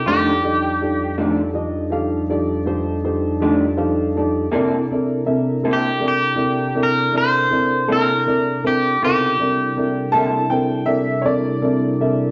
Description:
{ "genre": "blues", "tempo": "54 BPM (dotted quarters)", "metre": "12/8", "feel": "straight", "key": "C mixolydian", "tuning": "A4 = 435 Hz", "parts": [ { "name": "electric guitar at the edge of break-up", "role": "melody", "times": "0.0-10.1 s", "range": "G4 to C5", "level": "-21 LUFS", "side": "equal", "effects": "slapback echo" }, { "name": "mellow tonewheel organ", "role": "sustained chords", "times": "0.0-12.3 s", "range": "F2 to Bb4", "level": "-26 LUFS", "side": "equal", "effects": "slow rotary speaker" }, { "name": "dark baby grand piano", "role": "accompaniment", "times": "0.1-12.3 s", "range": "C3 to A5", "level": "-23 LUFS", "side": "equal", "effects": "none" }, { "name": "electric guitar through a small old amp", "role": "accompaniment", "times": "0.1-10.4 s", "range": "F2 to A4", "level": "-25 LUFS", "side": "equal", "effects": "tremolo" }, { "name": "bright upright piano", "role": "second line", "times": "10.1-12.3 s", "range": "Db5 to A5", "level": "-24 LUFS", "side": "equal", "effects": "none" } ], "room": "wet stone room reverb, RT60 1.3 s", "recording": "band playing live in one room, nothing above 7.5 kHz", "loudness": "-19 LUFS", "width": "mono", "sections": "0.0-12.3 A section", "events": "grand piano fill 3.4-4.5", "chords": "0.1 F13; 4.5 C13", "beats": "| 0.07 1.19 2.31 3.43 | 4.55 5.66 6.78 7.90 | 9.02 10.13 11.25" }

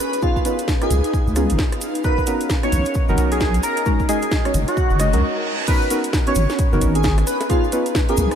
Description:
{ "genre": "UK garage, two-step garage", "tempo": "132 BPM", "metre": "4/4", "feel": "swing 60% on 16ths", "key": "G# dorian", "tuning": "A4 = 440 Hz", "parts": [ { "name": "airy dreamy lead", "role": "melody", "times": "0.0-8.4 s", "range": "E#4 to C#5", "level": "-24 LUFS", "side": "equal", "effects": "chorus, diffuse ambient delay" }, { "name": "house drum kit", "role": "drums", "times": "0.0-8.4 s", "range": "bongos, crash cymbal, hi-hat, rim click, snare drum", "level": "-28 LUFS", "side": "equal", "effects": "none" }, { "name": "cabasa", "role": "percussion", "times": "0.0-8.4 s", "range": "none", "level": "-34 LUFS", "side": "right 2 dB", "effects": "none" }, { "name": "airy breathy pad", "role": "texture", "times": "0.0-8.4 s", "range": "C#4 to F#5", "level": "-29 LUFS", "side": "right 1 dB", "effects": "chorus, sidechain pumping" }, { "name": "deep mellow chord stab", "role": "stabs", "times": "0.2-8.1 s", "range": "G#3 to D#5", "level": "-23 LUFS", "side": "equal", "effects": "chorus, diffuse ambient delay" }, { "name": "electronic kick drum", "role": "drums", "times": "0.2-8.1 s", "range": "none", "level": "-20 LUFS", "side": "equal", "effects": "none" }, { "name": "deep soft wobble bass", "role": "bass", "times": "0.9-8.3 s", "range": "F#1 to C#2", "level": "-19 LUFS", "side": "equal", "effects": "chorus, sidechain pumping" }, { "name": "reverse cymbal", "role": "sound effects", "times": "5.0-5.7 s", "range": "none", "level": "-33 LUFS", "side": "right 4 dB", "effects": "none" } ], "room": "moderate cathedral reverb, RT60 5.4 s", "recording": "dreamy mix soaked in reverb", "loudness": "-16 LUFS", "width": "side -8 dB against mid", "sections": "0.0-5.7 A section; 5.7-8.4 B section", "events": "reverse cymbal 5.0-5.7; stop 5.2-5.7; drop 5.7-8.4", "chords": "0.0 C#9; 2.0 Bmaj9; 3.6 F#6; 5.7 G#m11; 7.3 C#9", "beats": "| 0.23 0.68 1.13 1.59 | 2.04 2.50 2.95 3.41 | 3.86 4.32 4.77 5.22 | 5.68 6.13 6.59 7.04 | 7.50 7.95" }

